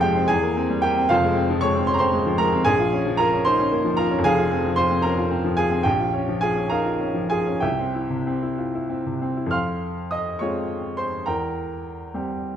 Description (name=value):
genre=classical, romantic character piece for solo piano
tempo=62-79 BPM (dotted quarters)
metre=6/8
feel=rubato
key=F minor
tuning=A4 = 440 Hz
part: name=bright upright piano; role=solo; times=0.0-12.6 s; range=F1 to F6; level=-20 LUFS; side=equal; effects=none
room=moderate recital hall reverb, RT60 1.6 s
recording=dark, warm production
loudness=-20 LUFS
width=side -9 dB against mid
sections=0.0-9.5 A section; 9.5-12.6 B section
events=none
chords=0.3 C7/E; 1.1 Fm; 2.7 Bbm; 4.2 Fm; 5.9 Bbm; 7.6 C; 9.5 Fm; 11.3 C7/E